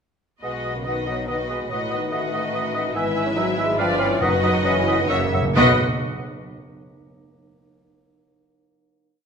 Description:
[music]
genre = classical, dramatic, fast romantic movement for symphony orchestra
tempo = 126-146 BPM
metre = 3/4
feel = rubato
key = B major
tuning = A4 = 440 Hz
[part]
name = rich symphonic violin section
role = melody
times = 0.4-5.8 s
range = D5 to E5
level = -27 LUFS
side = left 1 dB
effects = none
[part]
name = bright large flute ensemble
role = second line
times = 0.4-5.8 s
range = F#5 to G#5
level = -30 LUFS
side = left 1 dB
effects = none
[part]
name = bright oboe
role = second line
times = 0.4-5.8 s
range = D#5 to F5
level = -28 LUFS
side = right 1 dB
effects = none
[part]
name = clear clarinet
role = second line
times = 0.4-5.7 s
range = B4 to C#5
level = -32 LUFS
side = left 1 dB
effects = none
[part]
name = clear symphonic violin section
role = second line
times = 0.4-5.8 s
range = B4 to C#5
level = -31 LUFS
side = left 6 dB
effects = none
[part]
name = clear symphonic viola section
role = accompaniment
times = 0.4-5.8 s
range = E4 to F#4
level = -30 LUFS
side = left 1 dB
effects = none
[part]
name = warm bassoon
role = accompaniment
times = 0.4-5.8 s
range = F#3 to E4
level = -28 LUFS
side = right 1 dB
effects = none
[part]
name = mellow French horn section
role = sustained chords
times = 0.4-5.7 s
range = A2 to B3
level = -28 LUFS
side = left 3 dB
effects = none
[part]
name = clear symphonic double bass section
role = bass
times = 0.4-5.8 s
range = F#1 to B1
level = -30 LUFS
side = right 2 dB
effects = none
[part]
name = rich symphonic cello section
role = bass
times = 0.4-5.8 s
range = F#2 to B2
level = -28 LUFS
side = right 2 dB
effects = none
[part]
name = timpani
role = percussion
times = 4.2-5.8 s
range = F#2 to B2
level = -28 LUFS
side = equal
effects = none
[sound]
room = wet recital hall reverb, RT60 1.7 s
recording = minimal, uncompressed stereo recording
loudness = -19 LUFS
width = side -6 dB against mid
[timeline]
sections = 0.4-5.6 A section; 5.6-6.9 final chord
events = slowing down 2.3-5.6; timpani fill 5.1-5.6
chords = 0.4 B; 1.7 B7/A; 3.0 E/G#; 3.8 G7; 4.2 B/F#; 5.1 F#7; 5.6 B

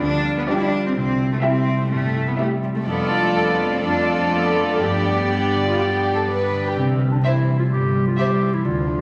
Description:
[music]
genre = cinematic, playful, whimsical film cue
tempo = 126 BPM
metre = 4/4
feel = straight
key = C major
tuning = A4 = 440 Hz
[part]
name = concert harp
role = arpeggios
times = 0.0-9.0 s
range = F2 to D5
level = -24 LUFS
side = equal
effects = none
[part]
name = rich studio double bass section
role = bass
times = 0.0-9.0 s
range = G1 to G2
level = -32 LUFS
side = equal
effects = none
[part]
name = warm studio cello section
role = bass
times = 0.0-9.0 s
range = C3 to E4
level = -28 LUFS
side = equal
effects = none
[part]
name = warm studio violin section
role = melody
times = 0.5-8.3 s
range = D5 to E5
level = -29 LUFS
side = equal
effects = none
[part]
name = dark studio violin section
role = second line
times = 0.5-8.3 s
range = F4 to C5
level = -28 LUFS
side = equal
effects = none
[part]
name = warm studio viola section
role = accompaniment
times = 0.5-8.3 s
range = C4 to F4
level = -31 LUFS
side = equal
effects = none
[part]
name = dark French horn section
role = sustained chords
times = 0.5-6.5 s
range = D4 to A4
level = -29 LUFS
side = equal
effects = none
[part]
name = warm clarinet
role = second line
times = 6.8-9.0 s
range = C4 to G4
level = -26 LUFS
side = equal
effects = none
[sound]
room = wet scoring stage reverb, RT60 1.6 s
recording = vinyl crackle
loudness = -20 LUFS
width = mono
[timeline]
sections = 0.0-6.8 A section; 6.8-9.0 B section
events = none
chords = 0.0 G7(no3)/D; 1.0 C; 2.9 Dm/F; 4.8 G; 6.8 C

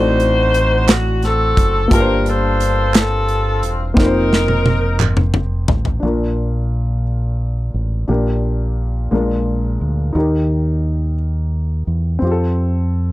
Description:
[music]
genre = slow gospel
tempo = 58 BPM (dotted quarters)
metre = 6/8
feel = straight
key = Bb major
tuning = A4 = 441 Hz
[part]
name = warm saxophone section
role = melody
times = 0.0-5.3 s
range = C4 to C5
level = -18 LUFS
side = left 1 dB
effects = none
[part]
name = warm baby grand piano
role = accompaniment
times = 0.0-13.1 s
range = G2 to A5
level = -21 LUFS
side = left 1 dB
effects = none
[part]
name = deep dub fingered electric bass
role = bass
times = 0.0-13.1 s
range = E1 to F2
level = -18 LUFS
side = equal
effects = none
[part]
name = modern studio drum kit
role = drums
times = 0.2-6.0 s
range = hi-hat, kick drum, snare drum, toms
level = -16 LUFS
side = equal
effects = none
[part]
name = group handclap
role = percussion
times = 0.9-5.3 s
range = none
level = -24 LUFS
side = right 15 dB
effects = none
[sound]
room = little or no reverb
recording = dry, close 1970s-style studio recording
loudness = -14 LUFS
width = side -17 dB against mid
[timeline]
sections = 0.0-6.0 A section; 6.0-13.1 B section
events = drum fill 4.0-6.0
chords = 0.0 D7b9/A; 1.9 Gm11; 4.0 F7sus4; 6.0 Bb; 8.1 Gm/Bb; 9.1 Bb7; 10.2 Eb; 12.2 F

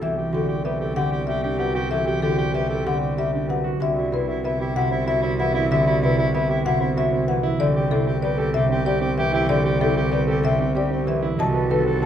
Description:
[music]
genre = classical, minimalist pattern music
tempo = 190 BPM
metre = 6/4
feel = straight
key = C lydian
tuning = A4 = 437 Hz
[part]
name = marimba with medium mallets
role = melody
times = 0.0-12.1 s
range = A4 to A5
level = -26 LUFS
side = left 6 dB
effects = none
[part]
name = clear soprano saxophone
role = second line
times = 0.0-12.1 s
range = E4 to A4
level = -29 LUFS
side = equal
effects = none
[part]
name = concert harp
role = accompaniment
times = 0.0-12.1 s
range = C3 to F#4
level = -24 LUFS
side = right 1 dB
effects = none
[part]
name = dark concert grand piano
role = arpeggios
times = 0.0-12.1 s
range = C4 to F#5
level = -28 LUFS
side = right 4 dB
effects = none
[part]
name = rich cello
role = bass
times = 0.0-12.1 s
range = C2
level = -26 LUFS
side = right 2 dB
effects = none
[sound]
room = wet large studio reverb, RT60 0.8 s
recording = heard from further back in the room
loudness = -19 LUFS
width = side -9 dB against mid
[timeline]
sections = 0.0-12.1 A section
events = none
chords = 0.0 Em9/C; 3.8 Cmaj9; 7.6 Am9/C; 11.4 B7/C

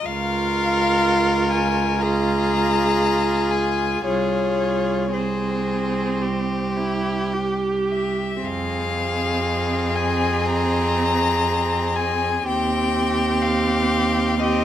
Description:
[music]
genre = classical, slow romantic movement for string quartet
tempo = 53-63 BPM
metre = 4/4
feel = rubato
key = F minor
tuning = A4 = 440 Hz
[part]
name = rich violin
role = melody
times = 0.0-14.6 s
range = C5 to Bb5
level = -24 LUFS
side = left 6 dB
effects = none
[part]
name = rich cello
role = bass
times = 0.0-14.6 s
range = C2 to F2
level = -25 LUFS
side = right 4 dB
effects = none
[part]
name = clear violin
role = second line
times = 0.1-14.6 s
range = G4 to Bb4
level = -25 LUFS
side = left 2 dB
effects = none
[part]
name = clear viola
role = accompaniment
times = 0.1-14.6 s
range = C4 to G4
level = -25 LUFS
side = right 2 dB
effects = none
[sound]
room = light reverb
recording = none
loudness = -19 LUFS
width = side -11 dB against mid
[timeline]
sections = 0.0-14.6 A section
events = none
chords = 0.0 Bbm/Db; 4.1 Fm/C; 6.2 C; 8.4 Fm; 12.5 Cm/Eb

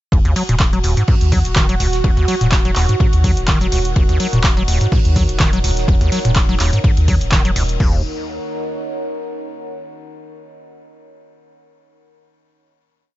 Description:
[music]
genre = acid house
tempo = 125 BPM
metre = 4/4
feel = swing 54% on 16ths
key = Eb minor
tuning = A4 = 441 Hz
[part]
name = warm analog pad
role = sustained chords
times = 0.1-7.8 s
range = Gb4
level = -26 LUFS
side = right 4 dB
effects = chorus, sidechain pumping
[part]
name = acid bass, square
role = riff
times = 0.1-8.0 s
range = Db2 to Gb3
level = -18 LUFS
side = equal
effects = overdrive, ping-pong delay
[part]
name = saturated sub bass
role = bass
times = 0.1-8.0 s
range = Eb1 to Eb2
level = -19 LUFS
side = equal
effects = sidechain pumping
[part]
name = damped 70s drum kit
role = drums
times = 0.1-7.7 s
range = hi-hat, ride cymbal, snare drum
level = -31 LUFS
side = left 3 dB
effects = sidechain pumping on cymbals, high-pass filter on cymbals, sidechain pumping on hats, high-pass filter on hats, high-pass filter on snare, high-pass filter on room
[part]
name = electronic kick drum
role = drums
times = 0.1-7.9 s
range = none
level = -15 LUFS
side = equal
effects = none
[part]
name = deep dark ambient pad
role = texture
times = 2.4-9.7 s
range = Eb4 to Gb5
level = -28 LUFS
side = equal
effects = chorus, built-in reverb, sidechain pumping
[part]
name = punchy analog drum machine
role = drums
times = 0.3-7.9 s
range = crash cymbal, handclaps, hi-hat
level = -22 LUFS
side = equal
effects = none
[sound]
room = little or no reverb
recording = nothing above 7.7 kHz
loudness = -13 LUFS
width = side -15 dB against mid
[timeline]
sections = 0.1-7.8 groove; 7.8-9.7 final chord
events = fade-in on ambient pad 0.1-7.8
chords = 0.1 Ebm7

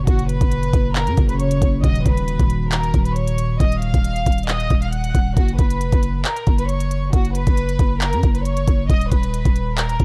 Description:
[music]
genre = hip hop, trap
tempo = 136 BPM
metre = 4/4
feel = half-time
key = Eb minor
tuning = A4 = 440 Hz
[part]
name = warm studio violin section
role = melody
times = 0.0-10.0 s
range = Gb4 to Gb6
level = -28 LUFS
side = equal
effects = none
[part]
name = concert harp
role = accompaniment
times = 0.0-5.4 s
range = Bb2 to Gb4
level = -29 LUFS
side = equal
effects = none
[part]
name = growling 808-style bass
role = bass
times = 0.0-10.0 s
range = Eb1 to Gb2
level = -24 LUFS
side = equal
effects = none
[part]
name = trap drum kit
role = drums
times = 0.1-10.0 s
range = handclaps, hi-hat, kick drum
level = -20 LUFS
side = equal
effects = none
[sound]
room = studio ambience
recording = dark, warm production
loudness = -19 LUFS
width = mono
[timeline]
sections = 0.0-10.0 A section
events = none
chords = 0.0 Gb; 1.8 Ebm; 5.4 Gb; 8.9 Eb5

